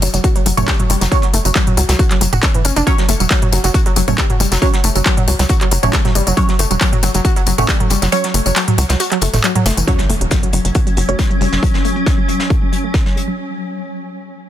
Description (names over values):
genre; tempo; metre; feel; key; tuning
driving peak-time techno; 137 BPM; 4/4; straight; F# phrygian; A4 = 440 Hz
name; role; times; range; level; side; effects
warbly dusty pluck; riff; 0.0-13.3 s; E3 to F#4; -20 LUFS; equal; chorus, sidechain pumping, digital delay
tight sequencer bass; bass; 0.0-11.6 s; E1 to C#2; -17 LUFS; equal; sidechain pumping
techno drum kit; drums; 0.0-13.4 s; handclaps, hi-hat, tambourine, toms; -19 LUFS; equal; sidechain pumping on hats, low-pass filter on hats, sidechain pumping on perc, low-pass filter on perc, low-pass filter on snare, sidechain pumping on toms, low-pass filter on toms
vintage brush drum kit; drums; 0.0-13.3 s; hi-hat, snare drum; -27 LUFS; left 2 dB; sidechain pumping on hats, high-pass filter on hats, soft clipping on snare, high-pass filter on snare, high-pass filter on room
electronic kick drum; drums; 0.2-13.0 s; none; -16 LUFS; equal; none
filtered dub chord stab; stabs; 0.6-11.2 s; F#3 to C#5; -23 LUFS; right 2 dB; phaser, lush chorus, sidechain pumping, ping-pong delay
swarming drone; drone; 10.6-13.4 s; F#3 to C#4; -22 LUFS; left 1 dB; built-in reverb, sidechain pumping
impact; sound effects; 9.9-11.6 s; none; -27 LUFS; equal; none
room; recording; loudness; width
little or no reverb; dense, heavily limited modern master; -12 LUFS; side -11 dB against mid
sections
0.0-9.9 A section; 9.9-13.4 B section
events
drop 0.0-9.9; kick drops out 8.1-9.9; impact 9.9-11.6; filter sweep on drum 9.9-13.4; filter sweep on synth arpeggio sound 9.9-13.4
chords
0.0 F#5